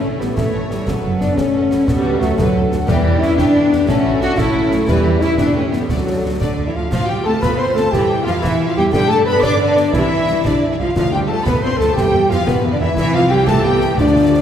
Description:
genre	cinematic, heroic adventure film score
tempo	119 BPM (dotted quarters)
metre	6/8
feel	straight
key	D dorian from 6.9 s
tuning	A4 = 440 Hz
part	warm symphonic violin section	melody	0.0-14.4 s	B3 to D6	-28 LUFS	left 2 dB	none
part	mellow clarinet	second line	0.0-14.4 s	B3 to D5	-26 LUFS	equal	none
part	mellow hollow concert flute	second line	0.0-14.3 s	B4 to D6	-27 LUFS	equal	none
part	rich chamber violin section	second line	0.0-14.4 s	E4 to D6	-28 LUFS	left 2 dB	none
part	warm symphonic viola section	accompaniment	0.0-14.4 s	C3 to F4	-24 LUFS	right 2 dB	none
part	mellow French horn section	sustained chords	0.0-14.4 s	F#3 to D5	-18 LUFS	left 2 dB	none
part	rich symphonic cello section	bass	0.0-14.4 s	B2 to F#4	-22 LUFS	right 2 dB	none
part	rich symphonic double bass section	bass	0.0-14.4 s	F#1 to G2	-23 LUFS	right 2 dB	none
part	concert snare drum, concert bass drum and clash cymbals	drums	0.2-14.4 s	none	-23 LUFS	equal	none
part	timpani	percussion	2.9-5.4, 11.0-11.4, 14.0-14.4 s	E2 to D3	-23 LUFS	equal	none
room	wet scoring stage reverb, RT60 1.9 s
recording	heard from further back in the room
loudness	-13 LUFS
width	side -9 dB against mid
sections	0.0-6.9 A section; 6.9-14.4 B section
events	none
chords	0.0 A; 0.9 F#m; 1.9 D; 2.9 Em; 3.9 A; 4.9 Em; 5.9 D; 6.9 Dm7; 7.9 Em; 8.9 G; 9.9 C; 11.0 Dm; 12.0 Em; 13.0 C

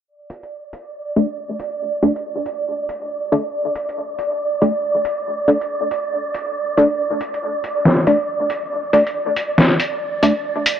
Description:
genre	deep dubstep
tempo	139 BPM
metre	4/4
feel	swing 62% on 16ths, half-time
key	unclear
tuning	A4 = 441 Hz
part	wind-like tuned noise texture	texture	0.5-10.8 s	D5	-22 LUFS	right 2 dB	built-in reverb
part	trip hop sampler-style drum kit	drums	0.3-10.8 s	hi-hat, snare drum	-17 LUFS	left 1 dB	none
part	filtered dub chord stab	stabs	1.2-10.3 s	A3 to D5	-19 LUFS	left 1 dB	ensemble chorus, dub echo
room	light reverb, digital ambience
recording	dry, gritty hardware recording, low-pass filter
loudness	-17 LUFS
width	side -9 dB against mid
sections	0.1-10.8 A section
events	filter sweep on synth stab 0.1-10.8; filter sweep 0.1-10.8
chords	0.1 D5

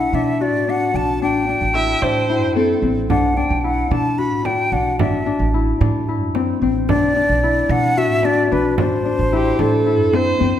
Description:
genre	contemporary instrumental, chamber music in an uneven meter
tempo	222 BPM (eighths)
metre	7/8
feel	straight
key	A dorian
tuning	A4 = 435 Hz
part	breathy silver concert flute	melody	0.0-10.1 s	B4 to B5	-21 LUFS	equal	none
part	Celtic harp	arpeggios	0.0-10.6 s	C4 to F#4	-19 LUFS	left 5 dB	none
part	upright bass	bass	0.0-10.5 s	A1 to B2	-22 LUFS	right 2 dB	none
part	warm viola	second line	1.7-2.9, 9.3-10.6 s	G4 to E5	-19 LUFS	right 4 dB	none
part	frame drum	percussion	3.1-10.4 s	none	-25 LUFS	right 5 dB	none
room	wet recital hall reverb, RT60 1.8 s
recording	none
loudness	-15 LUFS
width	side -10 dB against mid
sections	0.0-10.6 A section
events	none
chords	0.0 Bm7; 1.2 Am; 3.1 Bm7; 5.0 Am; 6.9 Bm7; 8.8 Am

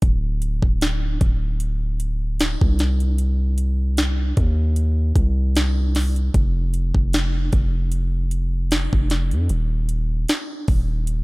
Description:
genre	contemporary R&B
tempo	76 BPM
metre	4/4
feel	swing 54% on 16ths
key	C minor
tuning	A4 = 440 Hz
part	long sustained 808-style bass	bass	0.0-11.2 s	D1 to F2	-20 LUFS	equal	none
part	trap drum kit	drums	0.0-11.2 s	hi-hat, kick drum, snare drum	-21 LUFS	equal	overdrive
room	little or no reverb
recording	none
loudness	-18 LUFS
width	side -24 dB against mid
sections	0.0-11.2 A section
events	none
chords	none

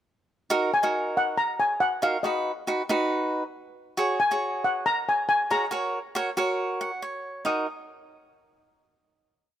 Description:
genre	calypso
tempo	138 BPM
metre	4/4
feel	swing 53% on 16ths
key	Eb minor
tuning	A4 = 440 Hz
part	cavaquinho	accompaniment	0.5-7.7 s	Eb4 to Gb5	-26 LUFS	right 2 dB	none
part	steel pan	melody	0.7-7.7 s	D#5 to Eb6	-24 LUFS	left 2 dB	none
room	light reverb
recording	none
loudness	-24 LUFS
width	side -11 dB against mid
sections	0.5-7.5 verse; 7.5-9.2 final chord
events	cavaquinho fill 6.6-7.5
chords	0.5 Ebm; 2.2 B; 4.0 Dbsus4; 5.7 Gb; 7.5 Ebm

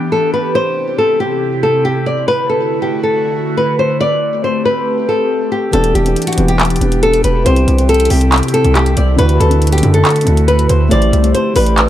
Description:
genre	hip hop, trap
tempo	139 BPM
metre	4/4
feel	half-time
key	unclear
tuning	A4 = 440 Hz
part	flamenco guitar	melody	0.0-11.9 s	F#4 to D5	-15 LUFS	left 1 dB	digital delay
part	airy breathy pad	sustained chords	0.0-11.9 s	C3 to G4	-20 LUFS	equal	chorus, phaser
part	felt-muted upright piano	accompaniment	5.7-11.9 s	C3 to D5	-16 LUFS	equal	none
part	distorted 808-style bass	bass	5.7-11.9 s	E1 to F#2	-13 LUFS	equal	distortion
part	trap drum kit	drums	5.7-11.9 s	handclaps, hi-hat	-18 LUFS	right 1 dB	none
room	small room reverb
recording	dark, warm production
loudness	-11 LUFS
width	side -12 dB against mid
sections	0.0-11.9 A section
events	none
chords	0.0 Em7; 0.6 C; 2.3 Dadd9; 4.0 Am7; 5.7 Em7; 7.5 C; 9.2 Dadd9; 10.9 Am7

